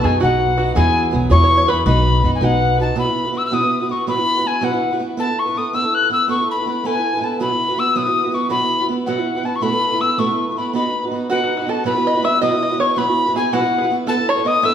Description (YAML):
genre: celtic folk, Celtic jig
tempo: 108 BPM (dotted quarters)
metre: 6/8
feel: straight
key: B mixolydian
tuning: A4 = 440 Hz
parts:
  - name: mellow tin whistle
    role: melody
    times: 0.0-14.7 s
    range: F#5 to F#6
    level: -18 LUFS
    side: left 3 dB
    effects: none
  - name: open-back banjo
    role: second line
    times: 0.0-2.6, 11.3-14.7 s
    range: F#4 to E5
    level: -23 LUFS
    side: right 3 dB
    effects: none
  - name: picked swing-style acoustic guitar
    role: accompaniment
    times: 0.0-14.7 s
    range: B2 to B4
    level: -21 LUFS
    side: right 4 dB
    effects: none
  - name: upright bass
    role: bass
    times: 0.0-2.9 s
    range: B1 to F#2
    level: -17 LUFS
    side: equal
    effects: none
room: wet large studio reverb, RT60 1.3 s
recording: band playing live in one room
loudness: -15 LUFS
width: side -9 dB against mid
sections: 0.0-3.0 A section; 3.0-11.9 B section; 11.9-14.7 B section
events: none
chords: 0.0 B; 0.8 Eadd9; 1.9 B; 3.0 Bsus4; 5.2 Asus2/B; 7.4 Bsus4; 9.6 Asus2/B; 10.7 B; 11.9 Bsus4; 14.1 Asus2/B